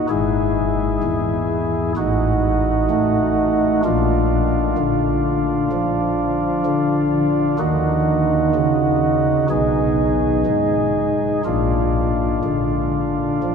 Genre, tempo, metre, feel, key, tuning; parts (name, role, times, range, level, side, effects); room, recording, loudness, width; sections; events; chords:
classical, chorale-style piece for pipe organ; 64 BPM; 4/4; rubato; A4 = 440 Hz
pipe organ, flutes; solo; 0.0-13.5 s; G#1 to G#4; -16 LUFS; equal
wet cathedral reverb, RT60 6.7 s; minimal, uncompressed stereo recording; -16 LUFS; side -6 dB against mid
0.0-13.5 A section
0.1 E/G#; 2.0 Ebdim/A; 3.8 Bb; 7.6 Ebm; 9.5 Abm/Cb; 11.5 Bb